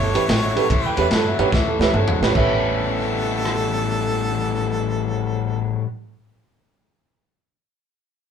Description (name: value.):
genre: electric blues shuffle.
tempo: 145 BPM.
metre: 4/4.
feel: swing 66% on 8ths.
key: A mixolydian.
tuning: A4 = 440 Hz.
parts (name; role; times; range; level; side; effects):
clear harmonica; melody; 0.0-5.8 s; A4 to C#5; -27 LUFS; right 1 dB; none.
clear upright piano; second line; 0.0-5.8 s; A4 to G5; -27 LUFS; right 2 dB; none.
cranked stack guitar; riff; 0.0-5.9 s; A2 to C#4; -24 LUFS; left 8 dB; overdrive.
upright bass; bass; 0.0-5.7 s; G1 to G2; -28 LUFS; right 1 dB; none.
clear concert grand piano; accompaniment; 0.1-5.8 s; C#4 to B4; -25 LUFS; right 6 dB; none.
crunchy breakbeat drum kit; drums; 0.1-3.5 s; crash cymbal, kick drum, ride cymbal, rim click, snare drum, toms; -22 LUFS; equal; none.
room: moderate studio reverb, RT60 0.7 s.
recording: band playing live in one room.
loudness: -18 LUFS.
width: side -7 dB against mid.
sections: 0.0-2.3 A section; 2.3-5.7 B section.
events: drum fill 1.5-2.3.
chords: 0.0 A9.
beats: 0.28 | 0.69 1.11 1.52 1.94 | 2.35 2.76 3.17 3.59 | 4.00 4.41 4.83 5.24.